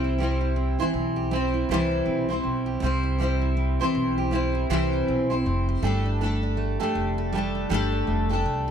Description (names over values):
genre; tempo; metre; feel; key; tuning
pop; 80 BPM; 4/4; swing 60% on 16ths; C major; A4 = 440 Hz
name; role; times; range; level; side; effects
fingerpicked steel-string acoustic guitar; accompaniment; 0.0-8.7 s; C3 to C5; -25 LUFS; equal; double-tracked left and right
picked steel-string acoustic guitar; arpeggios; 0.0-8.7 s; G3 to A4; -31 LUFS; right 8 dB; none
upright bass; bass; 0.0-8.7 s; F1 to C2; -27 LUFS; equal; none
room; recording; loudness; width
light reverb; none; -22 LUFS; side -8 dB against mid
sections
0.0-8.7 A section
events
none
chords
0.0 C; 5.8 Gsus2